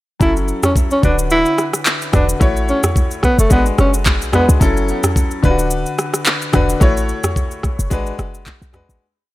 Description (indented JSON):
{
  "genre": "afrobeats",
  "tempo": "109 BPM",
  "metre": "4/4",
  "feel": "swing 55% on 16ths",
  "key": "unclear",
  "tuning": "A4 = 444 Hz",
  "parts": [
    { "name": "breathy tenor saxophone", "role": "melody", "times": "0.2-4.5 s", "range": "A3 to E4", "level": "-18 LUFS", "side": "equal", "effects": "tape echo" },
    { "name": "clear grand piano", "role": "accompaniment", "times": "0.2-9.0 s", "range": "D3 to C#5", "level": "-20 LUFS", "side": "left 3 dB", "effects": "none" },
    { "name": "short 808-style bass", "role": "bass", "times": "0.2-9.0 s", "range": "D1 to C#2", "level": "-17 LUFS", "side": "equal", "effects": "none" },
    { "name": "afro-pop drum kit", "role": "drums", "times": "0.2-9.0 s", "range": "handclaps, kick drum, rim click, shaker, toms", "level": "-16 LUFS", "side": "equal", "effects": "none" }
  ],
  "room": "little or no reverb",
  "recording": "none",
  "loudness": "-13 LUFS",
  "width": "side -17 dB against mid",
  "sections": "0.2-9.0 chorus",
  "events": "fade-out 6.8-9.0",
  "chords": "0.2 F#m7; 1.0 D6; 2.4 A6; 3.5 G#m7b5; 4.6 F#m7; 5.4 D6; 6.8 A6; 7.9 G#m7b5",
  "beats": "| 0.21 0.76 1.31 1.86 | 2.41 2.96 3.51 4.06 | 4.61 5.16 5.71 6.26 | 6.81 7.36 7.91 8.46"
}